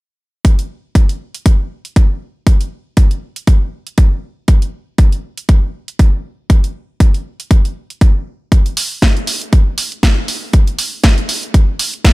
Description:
nu-disco, nu disco; 119 BPM; 4/4; swing 56% on 16ths
electronic kick drum; drums; 0.4-12.1 s; -10 LUFS; equal
house drum kit; drums; 0.4-12.1 s; hi-hat, snare drum; -19 LUFS; right 1 dB
little or no reverb; -12 LUFS; side -22 dB against mid
0.4-12.1 A section

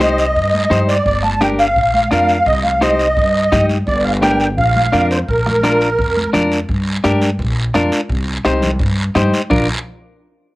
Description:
latin, cumbia; 170 BPM; 4/4; straight; Bb major; A4 = 440 Hz
musette accordion; melody; 0.0-6.3 s; Bb4 to A5; -15 LUFS; right 1 dB; cassette tape, plate reverb
semi-hollow electric guitar; accompaniment; 0.0-9.7 s; D4 to Eb5; -17 LUFS; left 1 dB; plate reverb
upright bass; bass; 0.0-9.7 s; G1 to G2; -19 LUFS; equal
congas; percussion; 0.0-9.6 s; -24 LUFS; equal
guiro; percussion; 0.0-9.6 s; -26 LUFS; right 1 dB
bombo; percussion; 1.1-9.6 s; -23 LUFS; equal
moderate studio reverb, RT60 0.5 s; home recording on cassette; -13 LUFS; side -19 dB against mid
0.0-6.7 A section; 6.7-9.5 B section; 9.5-10.6 C section
0.0 Cm; 1.1 Gm; 1.8 Bb; 2.5 Cm; 3.9 Gm; 4.6 Bb; 6.7 Gm; 7.4 Bb; 8.1 Cm; 9.5 Bb

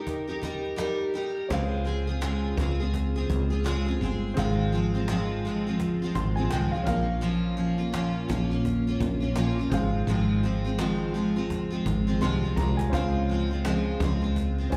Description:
acoustic pop; 84 BPM; 4/4; swing 60% on 16ths; Ab major; A4 = 439 Hz
picked steel-string acoustic guitar; accompaniment; 0.0-14.8 s; Ab2 to Bb4; -30 LUFS; equal; double-tracked
cajon; drums; 0.1-14.8 s; -41 LUFS; equal; slapback echo
clear upright piano; accompaniment; 1.5-14.8 s; C4 to C6; -39 LUFS; equal; slapback echo
woody fretless electric bass; bass; 1.5-14.8 s; G1 to Db2; -30 LUFS; equal
light reverb, studio reverb; live gig heard through the venue's PA, club reverb; -27 LUFS; mono
0.0-1.5 A section; 1.5-14.8 B section
drum fill 12.2-12.9
0.0 Eb/G; 1.5 Dbmaj7; 4.4 Ab6; 6.9 Bbm; 9.7 Ab6; 12.9 Dbmaj7

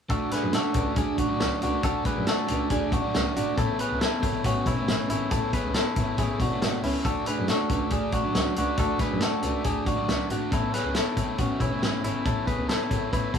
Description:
jangly indie pop; 138 BPM; 4/4; straight; A4 = 440 Hz
crunchy overdriven guitar; accompaniment; 0.1-13.4 s; D3 to D5; -29 LUFS; right 6 dB
direct-recorded clean electric guitar; arpeggios; 0.1-13.4 s; C#4 to B4; -29 LUFS; left 5 dB; analog delay
clear double bass; bass; 0.1-13.4 s; E1 to F#2; -32 LUFS; left 1 dB
vintage drum kit; drums; 0.1-13.4 s; hi-hat, kick drum, snare drum; -28 LUFS; left 1 dB
light reverb; -23 LUFS; side -7 dB against mid
0.1-13.4 A section
0.1 D; 3.6 Aadd9; 7.0 D; 10.5 Aadd9

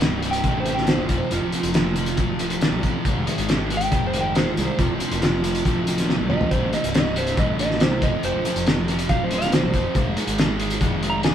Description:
classic rock; 139 BPM; 4/4; straight; A4 = 439 Hz
crunchy overdriven guitar; riff; 0.0-11.3 s; C2 to Ab3; -25 LUFS; equal
fuzz picked electric bass; bass; 0.0-11.3 s; C1 to C2; -27 LUFS; equal; overdrive
cloth-damped thuddy drum kit; drums; 0.0-11.3 s; hi-hat, kick drum, snare drum, toms; -22 LUFS; equal
electric slide guitar; melody; 0.3-11.3 s; F4 to Bb5; -26 LUFS; right 1 dB
moderate stone room reverb, RT60 1.2 s; band playing live in one room; -19 LUFS; side -9 dB against mid
0.0-11.3 A section
electric slide guitar solo 0.0-11.3; drum fill 6.1-6.5
0.0 C5; 1.1 F5; 3.1 Ab; 4.8 F5; 6.5 C5; 8.0 F5; 10.0 Ab5

